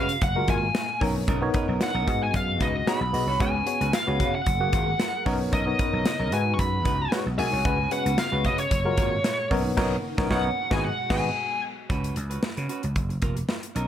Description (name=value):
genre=early-eighties boogie funk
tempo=113 BPM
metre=4/4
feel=straight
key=G# dorian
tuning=A4 = 440 Hz
part: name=high-gain lead guitar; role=melody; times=0.0-11.6 s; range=C#5 to C#6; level=-27 LUFS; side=left 1 dB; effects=distortion, slapback echo
part: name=barky tine electric piano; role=accompaniment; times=0.0-11.3 s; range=G#3 to F#5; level=-30 LUFS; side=left 2 dB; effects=overdrive, fast stereo tremolo
part: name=string machine, full ensemble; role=sustained chords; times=0.0-11.9 s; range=A#2 to E#5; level=-37 LUFS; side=equal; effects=none
part: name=clean electric guitar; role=riff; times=0.0-13.9 s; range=A#3 to C#5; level=-34 LUFS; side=right 4 dB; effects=wide subtle chorus
part: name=vintage slap bass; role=bass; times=0.0-13.9 s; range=E#1 to C#3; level=-28 LUFS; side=equal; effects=none
part: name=modern studio drum kit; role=drums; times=0.1-13.9 s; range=crash cymbal, hi-hat, kick drum, snare drum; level=-28 LUFS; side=equal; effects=none
room=light reverb, studio reverb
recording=none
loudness=-22 LUFS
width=side -10 dB against mid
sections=0.0-11.9 A section; 11.9-13.9 B section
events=band accent 9.8-11.9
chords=0.2 F#maj9; 1.0 Bmaj9; 2.1 G#m7; 3.4 C#7sus4; 4.5 F#maj9; 5.3 Bmaj9; 6.3 G#m7; 7.7 C#7sus4; 8.7 F#maj9; 9.5 Bmaj9; 10.6 G#m7; 11.9 C#7sus4; 13.0 F#maj9